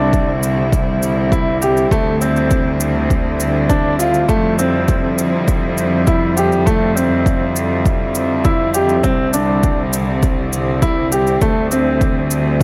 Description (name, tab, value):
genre	piano and strings electronica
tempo	101 BPM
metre	4/4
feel	straight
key	unclear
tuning	A4 = 440 Hz
part	dark string quartet	sustained chords	0.0-12.6 s	D3 to E4	-23 LUFS	equal	none
part	warm concert grand piano	riff	0.0-12.2 s	A3 to G4	-20 LUFS	equal	tape echo
part	clear studio cello section	bass	0.0-12.6 s	C2 to F2	-22 LUFS	equal	sidechain pumping
part	electronic kick drum	drums	0.1-12.6 s	none	-20 LUFS	equal	none
part	shaker	drums	0.1-12.6 s	none	-27 LUFS	equal	none
room	light reverb, small room reverb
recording	none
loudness	-16 LUFS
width	mono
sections	0.0-12.6 A section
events	none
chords	0.0 Cadd9; 1.9 D7(no3); 4.3 Fmaj7(no3); 9.0 Cadd9; 11.4 D7(no3)